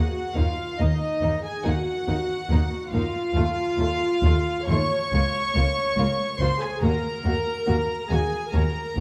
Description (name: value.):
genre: classical, slow romantic movement for string orchestra.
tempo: 70 BPM.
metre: 4/4.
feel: rubato.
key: unclear.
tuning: A4 = 440 Hz.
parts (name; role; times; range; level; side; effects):
rich studio violin section; melody; 0.0-9.0 s; Eb5 to Db6; -32 LUFS; equal; none.
dark studio viola section; accompaniment; 0.0-9.0 s; Eb4 to Db5; -30 LUFS; equal; none.
dark studio violin section; second line; 0.4-9.0 s; A3 to Gb4; -35 LUFS; equal; none.
dark studio double bass section; bass; 0.4-9.0 s; Db2 to Eb2; -28 LUFS; equal; none.
warm studio cello section; bass; 0.4-9.0 s; Db2 to Eb2; -31 LUFS; equal; none.
room: moderate recital hall reverb, RT60 1.6 s.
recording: none.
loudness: -24 LUFS.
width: mono.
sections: 0.0-9.0 A section.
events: none.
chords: 0.0 Ebm; 3.4 F7(no3)/Eb; 5.1 N.C.; 6.8 Eb5.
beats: 0.79 1.65 2.50 | 3.35 4.23 5.12 5.97 | 6.82 7.67 8.53.